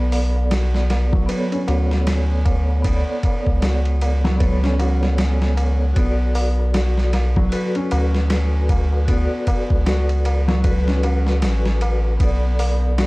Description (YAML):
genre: trip hop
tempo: 77 BPM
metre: 4/4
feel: swing 59% on 16ths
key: B minor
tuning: A4 = 438 Hz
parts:
  - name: vibraphone with medium hard mallets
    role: accompaniment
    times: 0.0-13.1 s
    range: B3 to D5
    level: -27 LUFS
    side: equal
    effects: tremolo, tape echo
  - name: felt-muted upright piano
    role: arpeggios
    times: 0.0-13.1 s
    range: F#3 to B4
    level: -26 LUFS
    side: left 1 dB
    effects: vintage 12-bit sampler grit, low-pass filter, analog delay
  - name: soft dub sub bass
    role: bass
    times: 0.0-13.1 s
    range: A1 to D2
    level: -18 LUFS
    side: equal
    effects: none
  - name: dusty soul sampler-style drum kit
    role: drums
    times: 0.1-13.1 s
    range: hi-hat, kick drum, ride cymbal, snare drum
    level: -23 LUFS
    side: equal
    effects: overdrive
  - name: tabla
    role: percussion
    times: 0.1-13.1 s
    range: none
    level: -33 LUFS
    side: equal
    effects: none
  - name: deep dark ambient pad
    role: sustained chords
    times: 12.2-13.1 s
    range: none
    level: barely audible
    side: none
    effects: none
room: little or no reverb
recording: dry, gritty hardware recording, vinyl crackle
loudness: -16 LUFS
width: side -22 dB against mid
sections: 0.0-13.1 A section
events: filter sweep on felt piano 0.0-13.1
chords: 0.0 Bm7; 6.0 D/B; 12.2 Bm7